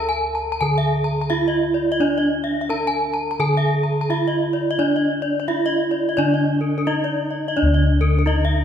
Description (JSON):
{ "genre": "Balinese gamelan", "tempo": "86 BPM", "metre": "4/4", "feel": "straight", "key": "D pelog", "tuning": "A4 = 435 Hz", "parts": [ { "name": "gamelan-type bronze metallophone", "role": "melody", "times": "0.0-8.6 s", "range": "D4 to Bb4-40c", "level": "-22 LUFS", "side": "right 2 dB", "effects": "none" }, { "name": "gamelan-type bossed gongs", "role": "bass", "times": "0.0-8.6 s", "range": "D2 to A4-45c", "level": "-22 LUFS", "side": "equal", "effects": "none" }, { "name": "gamelan-type bronze metallophone", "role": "arpeggios", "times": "0.1-8.5 s", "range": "Bb4-40c to Bb5-40c", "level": "-23 LUFS", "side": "left 4 dB", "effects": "none" } ], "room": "wet recital hall reverb, RT60 1.7 s", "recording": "recorded in a church or concert hall", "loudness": "-18 LUFS", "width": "side -8 dB against mid", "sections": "0.0-8.6 A section", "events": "none", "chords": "none", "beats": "0.61 1.31 | 2.00 2.70 3.39 4.09 | 4.79 5.48 6.18 6.87 | 7.57 8.26" }